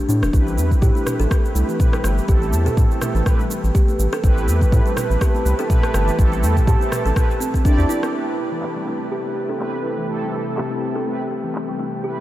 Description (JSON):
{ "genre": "afro house", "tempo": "123 BPM", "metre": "4/4", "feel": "swing 56% on 16ths", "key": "A minor", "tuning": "A4 = 438 Hz", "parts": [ { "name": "kalimba", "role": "arpeggios", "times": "0.1-12.2 s", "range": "E3 to A4", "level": "-25 LUFS", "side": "left 1 dB", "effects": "sidechain pumping, low-pass filter, analog delay" }, { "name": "round analog bass", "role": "bass", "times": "0.1-7.9 s", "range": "E1 to A2", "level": "-19 LUFS", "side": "equal", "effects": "sidechain pumping" }, { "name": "afro-pop drum kit", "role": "drums", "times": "0.1-11.7 s", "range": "crash cymbal, handclaps, rim click, shaker, toms", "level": "-30 LUFS", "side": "equal", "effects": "low-pass filter on perc, low-pass filter on snare, low-pass filter on toms, low-pass filter on cymbals" }, { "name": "dark analog pad", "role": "sustained chords", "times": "1.5-12.2 s", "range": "C4 to A5", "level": "-28 LUFS", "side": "equal", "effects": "chorus, phaser, sidechain pumping" }, { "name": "mellow synth brass", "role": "stabs", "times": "0.3-12.2 s", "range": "A3 to D5", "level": "-27 LUFS", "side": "right 2 dB", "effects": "chorus, sidechain pumping, analog delay" }, { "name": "electronic kick drum", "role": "drums", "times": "0.3-7.8 s", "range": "none", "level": "-17 LUFS", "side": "equal", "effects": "none" } ], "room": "light reverb, digital ambience", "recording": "none", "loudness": "-17 LUFS", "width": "side -14 dB against mid", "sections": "0.0-8.1 A section; 8.1-12.2 B section", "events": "none", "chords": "0.0 Am9", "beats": "| 0.33 0.82 1.31 1.80 | 2.29 2.77 3.26 3.75 | 4.24 4.72 5.21 5.70 | 6.19 6.68 7.16 7.65 | 8.14 8.63 9.12 9.60 | 10.09 10.58 11.07 11.55 | 12.04" }